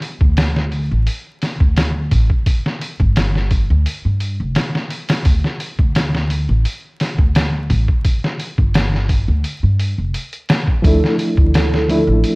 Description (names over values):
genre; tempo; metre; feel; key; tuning
trip hop; 86 BPM; 4/4; straight; D minor; A4 = 440 Hz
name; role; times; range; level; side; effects
trip hop sampler-style drum kit; drums; 0.0-12.4 s; hi-hat, kick drum, snare drum; -17 LUFS; equal; vintage 12-bit sampler grit
upright bass; bass; 0.2-12.2 s; F1 to G2; -16 LUFS; equal; none
overdriven reed electric piano; accompaniment; 10.8-12.4 s; F3 to E4; -18 LUFS; equal; tremolo
pure breathy sine lead; melody; 10.9-12.2 s; A4; -21 LUFS; right 1 dB; ensemble chorus, dub echo
room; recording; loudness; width
little or no reverb; worn, warbling old tape, cassette tape, vinyl crackle, warbly pitch drift; -14 LUFS; side -26 dB against mid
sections
0.0-12.4 A section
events
none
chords
0.0 D5; 2.5 G5; 5.3 D5; 8.1 G5; 10.8 Dmadd9